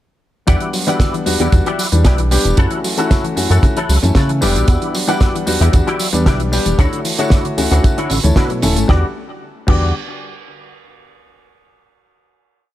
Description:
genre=nu-disco, nu disco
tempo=114 BPM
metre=4/4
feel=straight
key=E dorian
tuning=A4 = 441 Hz
part: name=warm grand piano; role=accompaniment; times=0.5-9.9 s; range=G3 to F#5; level=-20 LUFS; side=left 1 dB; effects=sidechain pumping, tape echo
part: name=soft round pluck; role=arpeggios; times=0.5-9.9 s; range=C#3 to A3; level=-25 LUFS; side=left 3 dB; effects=chorus, sidechain pumping, tape echo
part: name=electric guitar with an envelope filter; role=riff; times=0.5-9.9 s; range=D4 to D5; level=-22 LUFS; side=left 2 dB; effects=ensemble chorus, tape echo
part: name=chorused synth bass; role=bass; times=0.5-9.9 s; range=D1 to C#3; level=-15 LUFS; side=equal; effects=none
part: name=damped 70s drum kit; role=drums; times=0.5-9.8 s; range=crash cymbal, hi-hat, snare drum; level=-22 LUFS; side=right 3 dB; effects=studio reverb
part: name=kick drum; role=drums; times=0.5-9.8 s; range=none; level=-13 LUFS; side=equal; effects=studio reverb
part: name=tambourine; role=percussion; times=0.5-8.9 s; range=none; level=-28 LUFS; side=left 2 dB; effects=none
room=small room ambience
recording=none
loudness=-12 LUFS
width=side -14 dB against mid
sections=0.5-8.9 drop; 8.9-11.0 final chord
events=drop 0.5-8.9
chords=0.5 Em9; 2.6 F#m7; 4.4 Em9; 6.8 Dmaj9; 8.9 Em9

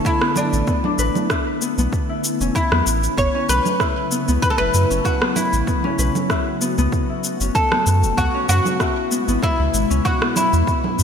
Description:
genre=organic downtempo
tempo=96 BPM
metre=4/4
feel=swing 54% on 16ths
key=unclear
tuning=A4 = 440 Hz
part: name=oud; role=melody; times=0.0-11.0 s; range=D4 to C#5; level=-21 LUFS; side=equal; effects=digital delay
part: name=ethereal airy pad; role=sustained chords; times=0.0-11.0 s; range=B2 to F#4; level=-26 LUFS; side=equal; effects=ensemble chorus, built-in reverb, sidechain pumping
part: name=Celtic harp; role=arpeggios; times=0.0-11.0 s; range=B3 to B4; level=-25 LUFS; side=left 5 dB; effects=digital delay
part: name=electronic kick drum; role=drums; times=0.0-10.8 s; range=none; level=-23 LUFS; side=right 1 dB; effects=none
part: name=electronic cabasa, rim click and congas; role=drums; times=0.1-11.0 s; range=none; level=-24 LUFS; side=right 2 dB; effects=gated reverb
part: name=warm sub bass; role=bass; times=0.5-11.0 s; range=E1 to F#2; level=-19 LUFS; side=equal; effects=none
room=moderate lush hall reverb, RT60 3.3 s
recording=bright 1980s-style digital production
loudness=-16 LUFS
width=side -7 dB against mid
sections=0.0-11.0 A section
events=none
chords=0.0 E7sus4; 3.2 F#m7; 8.2 C#m7

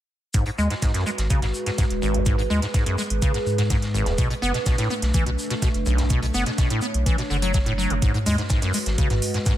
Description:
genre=acid house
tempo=125 BPM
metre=4/4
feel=straight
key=G# phrygian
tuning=A4 = 440 Hz
part: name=dark analog pad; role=sustained chords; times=0.8-9.6 s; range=G#3 to C#5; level=-29 LUFS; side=right 1 dB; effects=chorus, phaser, sidechain pumping
part: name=acid bass, square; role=riff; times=0.3-9.5 s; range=G#1 to B3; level=-25 LUFS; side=equal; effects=tube saturation, wide subtle chorus, dub echo
part: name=saturated sub bass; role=bass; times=0.3-9.2 s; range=D#1 to G#2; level=-25 LUFS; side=equal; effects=sidechain pumping
part: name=booming analog drum machine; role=drums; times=0.3-9.6 s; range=hi-hat, toms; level=-29 LUFS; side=right 1 dB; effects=overdrive
part: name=crunchy breakbeat drum kit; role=drums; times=0.3-9.6 s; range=hi-hat, shaker, snare drum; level=-35 LUFS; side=equal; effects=sidechain pumping on hats, high-pass filter on hats, high-pass filter on snare, sidechain pumping on perc, high-pass filter on perc, high-pass filter on room
part: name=electronic kick drum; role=drums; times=0.3-9.6 s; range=none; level=-22 LUFS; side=equal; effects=none
room=studio ambience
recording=none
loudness=-20 LUFS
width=side -12 dB against mid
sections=0.3-9.6 A section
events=none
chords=0.3 G#m7; 4.2 Bm7; 8.0 G#m7

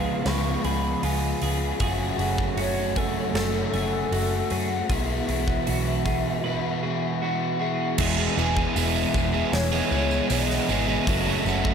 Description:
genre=rock, shoegaze and dream pop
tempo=78 BPM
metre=4/4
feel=straight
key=E major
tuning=A4 = 440 Hz
part: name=reedy FM lead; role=melody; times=0.0-11.7 s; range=A4 to C#6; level=-32 LUFS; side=left 1 dB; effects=chorus, tape echo
part: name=twelve-string electric guitar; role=arpeggios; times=0.0-8.0 s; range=E#4 to G#5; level=-35 LUFS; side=right 5 dB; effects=lush chorus, tape echo
part: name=overdriven electric guitar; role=riff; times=0.0-11.7 s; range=F#2 to A4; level=-28 LUFS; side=left 7 dB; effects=wide subtle chorus
part: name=overdriven semi-hollow guitar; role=riff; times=0.0-11.7 s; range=E2 to G#4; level=-28 LUFS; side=right 8 dB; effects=reverse reverb
part: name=vintage muted picked electric bass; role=bass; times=0.0-11.7 s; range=E1 to F#2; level=-28 LUFS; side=equal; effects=none
part: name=huge arena drum kit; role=drums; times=0.3-11.7 s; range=crash cymbal, hi-hat, kick drum, snare drum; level=-31 LUFS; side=equal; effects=none
part: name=tambourine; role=percussion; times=8.4-11.6 s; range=none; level=-39 LUFS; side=right 16 dB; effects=none
room=wet church reverb, RT60 3.3 s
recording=dreamy mix soaked in reverb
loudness=-22 LUFS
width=side -7 dB against mid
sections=0.0-8.0 A section; 8.0-11.7 A section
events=none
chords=0.0 C#7; 1.8 F#m; 4.9 Bsus4; 8.0 E; 11.1 F#m7

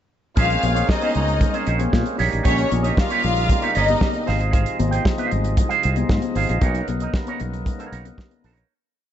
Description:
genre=disco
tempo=115 BPM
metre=4/4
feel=straight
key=Bb dorian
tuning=A4 = 440 Hz
part: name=clear studio string section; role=second line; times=0.4-4.2 s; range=Db4 to F5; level=-23 LUFS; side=left 2 dB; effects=none
part: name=electric guitar with an envelope filter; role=accompaniment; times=0.4-8.7 s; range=Db4 to G5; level=-26 LUFS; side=right 8 dB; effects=none
part: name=overdriven tonewheel organ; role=sustained chords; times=0.4-8.7 s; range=C3 to Eb4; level=-28 LUFS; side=equal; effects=slow rotary speaker
part: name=fingered electric bass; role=bass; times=0.4-8.6 s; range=G1 to Bb2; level=-22 LUFS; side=equal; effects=none
part: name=damped 70s drum kit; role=drums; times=0.4-8.7 s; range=hi-hat, kick drum, snare drum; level=-21 LUFS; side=equal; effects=none
part: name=congas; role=percussion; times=0.4-8.4 s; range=none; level=-29 LUFS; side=left 9 dB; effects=none
room=light reverb, small room ambience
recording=nothing above 7.9 kHz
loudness=-18 LUFS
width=side -10 dB against mid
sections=0.4-8.7 verse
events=fade-out 6.6-8.7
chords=0.4 Bbm9; 2.2 Eb7; 4.3 Ab6; 6.6 Bmaj9

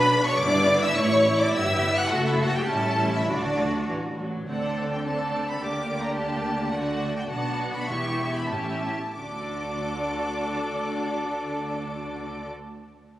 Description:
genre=quick classical-period movement for string orchestra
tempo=90-108 BPM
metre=2/4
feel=straight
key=D major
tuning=A4 = 439 Hz
part: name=rich studio violin section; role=melody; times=0.0-12.5 s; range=D5 to F#6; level=-31 LUFS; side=equal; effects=none
part: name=rich studio violin section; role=second line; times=0.0-12.5 s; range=D4 to F#5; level=-27 LUFS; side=left 1 dB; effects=none
part: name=clear studio viola section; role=accompaniment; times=0.0-12.5 s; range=E3 to F#4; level=-30 LUFS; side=equal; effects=none
part: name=clear studio cello section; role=bass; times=0.0-12.5 s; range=E2 to A4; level=-34 LUFS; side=right 1 dB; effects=none
part: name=rich studio double bass section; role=bass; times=0.0-12.5 s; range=E1 to D2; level=-31 LUFS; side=right 1 dB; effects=none
room=moderate concert hall reverb, RT60 2.3 s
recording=recorded on a phone in the room, club ambience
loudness=-23 LUFS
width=side -14 dB against mid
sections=0.0-4.5 A section; 4.5-9.2 B section; 9.2-11.7 C section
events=slowing down 6.2-9.2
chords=0.4 Em7/G; 1.0 A; 1.5 G6; 2.1 F#m7; 2.7 A7; 3.3 D; 4.5 D5; 5.6 Gm/D; 6.7 D; 7.3 Bm; 7.9 Em; 8.5 A7; 9.2 D

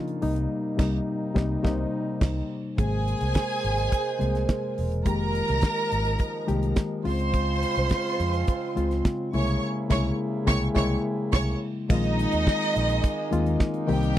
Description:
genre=disco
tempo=105 BPM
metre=4/4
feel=straight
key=unclear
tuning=A4 = 440 Hz
part: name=reed electric piano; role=accompaniment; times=0.0-14.2 s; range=C3 to G5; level=-28 LUFS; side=left 3 dB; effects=overdrive
part: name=mellow French horn section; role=sustained chords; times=0.0-14.2 s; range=C3 to C5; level=-33 LUFS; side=right 3 dB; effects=none
part: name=damped 70s drum kit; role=drums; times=0.1-14.2 s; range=crash cymbal, hi-hat, kick drum, snare drum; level=-24 LUFS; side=right 1 dB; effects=none
part: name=fingered electric bass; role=bass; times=0.2-14.2 s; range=E1 to F2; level=-27 LUFS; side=equal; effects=none
part: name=warm studio violin section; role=second line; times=2.8-14.2 s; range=Eb4 to Db6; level=-29 LUFS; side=right 2 dB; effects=none
room=little or no reverb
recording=dry, close 1970s-style studio recording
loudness=-23 LUFS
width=side -12 dB against mid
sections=0.0-2.8 A section; 2.8-11.9 B section; 11.9-14.2 C section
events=band accent 0.5-2.8, 9.6-11.9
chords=0.2 Cm7; 2.8 Abadd9; 5.1 Fm11; 7.1 Dbmaj7; 9.3 C7b9b13; 11.9 Bb9sus4

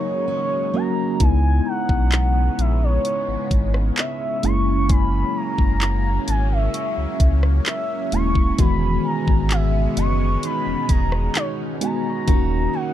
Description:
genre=contemporary R&B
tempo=65 BPM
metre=4/4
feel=straight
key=C# dorian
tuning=A4 = 440 Hz
part: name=gliding portamento lead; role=melody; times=0.0-12.9 s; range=C#5 to C#6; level=-26 LUFS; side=equal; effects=chorus, ping-pong delay
part: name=tine electric piano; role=accompaniment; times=0.0-12.9 s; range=D#3 to F#4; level=-25 LUFS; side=left 2 dB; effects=medium stereo tremolo
part: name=lush unison pad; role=sustained chords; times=0.0-12.9 s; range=B2 to D#4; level=-30 LUFS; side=equal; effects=chorus, phaser
part: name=picked steel-string acoustic guitar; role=arpeggios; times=0.0-1.8, 8.6-12.9 s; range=D#3 to G#4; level=-30 LUFS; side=right 13 dB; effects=none
part: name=large celesta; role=texture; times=0.0-12.9 s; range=C#5 to A#6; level=-39 LUFS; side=left 2 dB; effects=none
part: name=sub bass with octave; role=bass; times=1.2-12.7 s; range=D#1 to C#2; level=-20 LUFS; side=equal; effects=none
part: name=smooth R&B drum kit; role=drums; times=1.2-12.5 s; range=handclaps, hi-hat, kick drum, rim click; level=-19 LUFS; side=equal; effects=none
room=little or no reverb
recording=dark, warm production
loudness=-18 LUFS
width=side -12 dB against mid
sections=0.0-1.2 A section; 1.2-12.9 A section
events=break 0.0-1.2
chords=0.0 D#m7; 1.2 C#m7; 4.4 F#7; 8.6 Emaj7; 12.3 D#m7

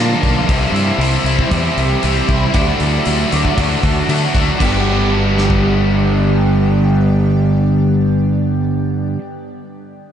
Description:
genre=rock, shoegaze and dream pop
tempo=117 BPM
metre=4/4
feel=straight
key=G major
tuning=A4 = 442 Hz
part: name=evolving wavetable pad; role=sustained chords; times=0.0-9.1 s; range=B3 to D6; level=-25 LUFS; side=equal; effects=chorus, built-in reverb, phaser
part: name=picked twelve-string acoustic guitar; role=arpeggios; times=0.0-9.2 s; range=E3 to A4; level=-27 LUFS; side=right 1 dB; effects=none
part: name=biting overdriven guitar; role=riff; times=0.0-9.2 s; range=G2 to G4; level=-19 LUFS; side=left 7 dB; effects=lush chorus
part: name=biting overdriven guitar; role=riff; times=0.0-9.2 s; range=G2 to E4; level=-18 LUFS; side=right 5 dB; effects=reverse reverb
part: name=growling fingered electric bass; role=bass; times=0.0-9.2 s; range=G1 to D3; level=-18 LUFS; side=equal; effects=overdrive
part: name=big rock drum kit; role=drums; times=0.2-5.6 s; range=crash cymbal, hi-hat, kick drum, snare drum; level=-21 LUFS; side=equal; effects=none
room=wet huge ambient reverb, RT60 6.4 s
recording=dreamy mix soaked in reverb, nothing above 10.4 kHz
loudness=-12 LUFS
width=side -9 dB against mid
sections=0.0-4.6 A section; 4.6-8.7 B section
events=none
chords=0.5 Cmaj7; 2.5 Dadd9; 4.6 G

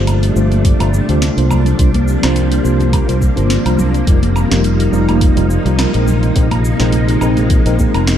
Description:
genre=sunset chillout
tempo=105 BPM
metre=4/4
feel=swing 55% on 16ths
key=unclear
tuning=A4 = 439 Hz
part: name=tine electric piano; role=accompaniment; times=0.0-8.2 s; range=G3 to C5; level=-18 LUFS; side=moving between left 4 dB and right 3 dB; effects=medium stereo tremolo, auto-pan, low-pass filter, ping-pong delay
part: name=soft string machine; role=sustained chords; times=0.0-8.2 s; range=C3 to Eb4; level=-19 LUFS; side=equal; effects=ensemble chorus
part: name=fingered electric bass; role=bass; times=0.0-8.1 s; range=F1 to D2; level=-14 LUFS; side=equal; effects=none
part: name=smooth R&B drum kit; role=drums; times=0.1-8.2 s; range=cabasa, hi-hat, snare drum, woodblock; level=-22 LUFS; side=right 1 dB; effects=overdrive
part: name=congas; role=percussion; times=0.1-7.9 s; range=none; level=-25 LUFS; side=left 1 dB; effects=none
part: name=electronic kick drum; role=drums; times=0.6-7.9 s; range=none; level=-14 LUFS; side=equal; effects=overdrive
room=moderate plate reverb, RT60 1.7 s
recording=dreamy mix soaked in reverb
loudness=-11 LUFS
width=side -10 dB against mid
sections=0.0-8.2 A section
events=filter sweep on tine electric piano 0.0-8.2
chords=0.0 G9sus4; 1.5 C9sus4; 4.1 F9sus4; 6.1 Bb9sus4

